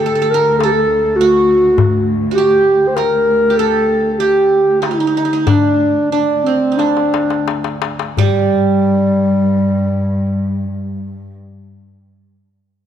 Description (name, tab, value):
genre	Arabic maqam ensemble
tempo	85-104 BPM (eighths)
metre	10/8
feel	straight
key	D maqam hijaz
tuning	A4 = 440 Hz
part	dark clarinet	melody	0.0-11.3 s	G3 to C5	-14 LUFS	left 1 dB	slapback echo
part	qanun	second line	0.0-11.3 s	G3 to Bb4	-19 LUFS	right 7 dB	none
part	dark chamber cello section	drone	0.0-11.3 s	D2 to G2	-22 LUFS	equal	stereo widening
part	darbuka	percussion	0.0-8.8 s	none	-18 LUFS	left 5 dB	none
room	moderate echo chamber reverb, RT60 2.3 s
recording	1960s-style stereo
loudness	-12 LUFS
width	side -9 dB against mid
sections	0.0-8.2 A section; 8.2-12.9 B section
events	slowing down 0.0-8.2; drum fill 6.8-8.2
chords	none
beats	0.03 0.60 1.19 | 1.77 2.37 2.97 3.58 4.20 4.83 5.47 6.13 6.80 7.48 | 8.18 8.89 9.59 10.30 11.01